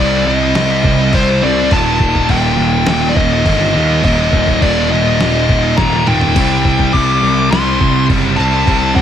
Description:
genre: heavy metal.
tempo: 103 BPM.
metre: 4/4.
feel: straight.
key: unclear.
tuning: A4 = 443 Hz.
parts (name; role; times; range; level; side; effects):
high-gain lead guitar; melody; 0.0-9.0 s; C5 to D6; -17 LUFS; left 2 dB; distortion.
scooped high-gain guitar; riff; 0.0-9.0 s; Eb2 to G3; -20 LUFS; left 13 dB; distortion.
scooped high-gain guitar; riff; 0.0-9.0 s; Eb2 to C4; -18 LUFS; right 10 dB; distortion.
sludgy distorted guitar; riff; 0.0-9.0 s; Eb2 to C4; -19 LUFS; equal; overdrive.
fuzz picked electric bass; bass; 0.0-9.0 s; Eb1 to Eb2; -17 LUFS; equal; overdrive.
dusty soul sampler-style drum kit; drums; 0.6-9.0 s; crash cymbal, kick drum, snare drum, toms; -18 LUFS; equal; overdrive.
room: little or no reverb.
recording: none.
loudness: -10 LUFS.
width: side -9 dB against mid.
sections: 0.0-9.0 A section.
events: drum fill 5.8-6.4.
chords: 0.0 Cm; 1.7 Eb; 6.4 C5.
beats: 0.55 1.13 | 1.71 2.29 2.87 3.45 | 4.03 4.61 5.19 5.77 | 6.35 6.93 7.51 8.09 | 8.67.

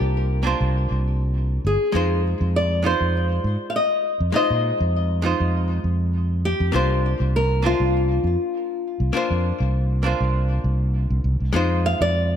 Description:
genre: sunset chillout.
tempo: 100 BPM.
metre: 4/4.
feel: swing 54% on 16ths.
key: F dorian.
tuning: A4 = 438 Hz.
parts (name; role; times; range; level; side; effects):
flamenco guitar; melody; 0.0-12.4 s; F4 to F5; -24 LUFS; left 2 dB; ping-pong delay.
archtop guitar, miked and amplified; accompaniment; 0.0-12.4 s; Ab3 to C5; -26 LUFS; moving between left 4 dB and right 5 dB; auto-pan, ping-pong delay.
fretless electric bass; bass; 0.0-12.4 s; G1 to Bb2; -21 LUFS; equal; none.
room: light reverb, studio ambience.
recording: dark, warm production.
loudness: -19 LUFS.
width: side -8 dB against mid.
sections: 0.0-11.5 A section.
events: none.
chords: 0.0 C9sus4; 1.9 Fm7; 6.7 C9sus4; 11.5 Fm7.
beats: 0.14 0.74 1.34 | 1.94 2.54 3.14 3.74 | 4.34 4.94 5.54 6.14 | 6.74 7.34 7.94 8.54 | 9.14 9.74 10.34 10.94 | 11.54 12.14.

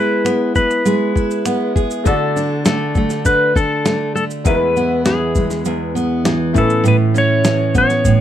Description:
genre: acoustic pop.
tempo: 100 BPM.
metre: 4/4.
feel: straight.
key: unclear.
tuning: A4 = 439 Hz.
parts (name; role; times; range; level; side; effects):
clean lap steel guitar; melody; 0.0-8.2 s; G#4 to C#5; -18 LUFS; left 2 dB; none.
fingerpicked steel-string acoustic guitar; accompaniment; 0.0-8.2 s; E2 to G#4; -17 LUFS; right 2 dB; none.
dusty soul sampler-style drum kit; drums; 0.3-8.2 s; finger snaps, kick drum, shaker, snare drum; -19 LUFS; left 1 dB; overdrive.
bright upright piano; accompaniment; 2.0-8.2 s; G#3 to D5; -24 LUFS; left 3 dB; none.
room: light reverb.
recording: close, detailed microphones.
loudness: -14 LUFS.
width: side -10 dB against mid.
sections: 0.0-2.1 A section; 2.1-8.2 B section.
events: none.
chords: 0.0 E/G#; 2.1 D; 4.5 E; 6.6 Aadd9.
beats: 0.25 0.85 1.46 | 2.06 2.66 3.26 3.86 | 4.46 5.06 5.66 6.25 | 6.85 7.45 8.05.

